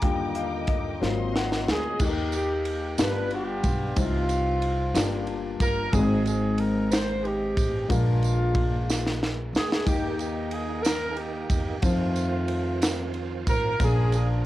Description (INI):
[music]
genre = slow gospel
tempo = 61 BPM (dotted quarters)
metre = 6/8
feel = straight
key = Eb major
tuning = A4 = 444 Hz
[part]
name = warm concert grand piano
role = accompaniment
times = 0.0-14.5 s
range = G2 to G5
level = -32 LUFS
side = left 7 dB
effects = cassette tape
[part]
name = bright tonewheel organ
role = sustained chords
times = 0.0-2.0, 9.9-14.5 s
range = D3 to Bb4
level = -36 LUFS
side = right 9 dB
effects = fast rotary speaker, overdrive, chorus vibrato, cassette tape
[part]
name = rich symphonic string section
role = sustained chords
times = 0.0-2.0 s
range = Eb5 to D6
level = -37 LUFS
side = left 2 dB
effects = cassette tape
[part]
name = upright bass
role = bass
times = 0.0-14.5 s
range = G1 to F2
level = -28 LUFS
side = equal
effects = none
[part]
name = crisp fusion drum kit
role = drums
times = 0.0-14.3 s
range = crash cymbal, hi-hat, kick drum, ride cymbal, snare drum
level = -28 LUFS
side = equal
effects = cassette tape
[part]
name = mellow horn section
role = melody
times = 1.7-14.5 s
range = Ab3 to C5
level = -29 LUFS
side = equal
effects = cassette tape
[part]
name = tambourine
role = percussion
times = 2.0-14.4 s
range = none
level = -39 LUFS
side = right 10 dB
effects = none
[sound]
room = little or no reverb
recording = home recording on cassette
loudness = -23 LUFS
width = side -15 dB against mid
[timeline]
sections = 0.0-2.0 A section; 2.0-14.5 B section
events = grand piano solo 0.0-2.0; drum fill 1.0-2.0, 8.9-9.9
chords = 0.0 Ebmaj7; 1.0 Ab13; 2.0 Eb; 3.0 G7; 4.0 Cm; 5.0 Gm7; 5.9 Ab; 7.9 Bb7; 9.9 Eb; 11.8 F7; 13.8 Bb